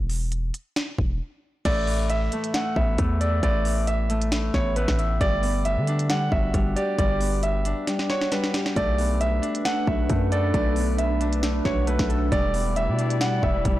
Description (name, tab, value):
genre	hip hop, trap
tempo	135 BPM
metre	4/4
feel	half-time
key	unclear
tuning	A4 = 439 Hz
part	hard-hitting 808-style bass	bass	0.0-13.8 s	E1 to D3	-25 LUFS	equal	none
part	trap drum kit	drums	0.1-13.8 s	crash cymbal, hi-hat, kick drum, snare drum	-27 LUFS	equal	none
part	clear grand piano	melody	1.7-13.8 s	B4 to F#5	-27 LUFS	right 2 dB	low-pass filter
part	Celtic harp	accompaniment	1.7-13.8 s	A2 to A4	-28 LUFS	left 2 dB	low-pass filter
part	warbly tape-like pad	sustained chords	8.8-13.8 s	G3 to D5	-30 LUFS	right 1 dB	chorus, built-in reverb
room	light reverb, digital ambience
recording	blown-out, overdriven recording, overdrive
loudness	-21 LUFS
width	side -15 dB against mid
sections	0.0-1.7 A section; 1.7-13.8 B section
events	break 0.0-1.7; drum fill 7.9-8.8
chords	0.0 E5; 1.7 Asus2; 5.2 Gmaj7; 8.8 Bm7; 12.3 Em7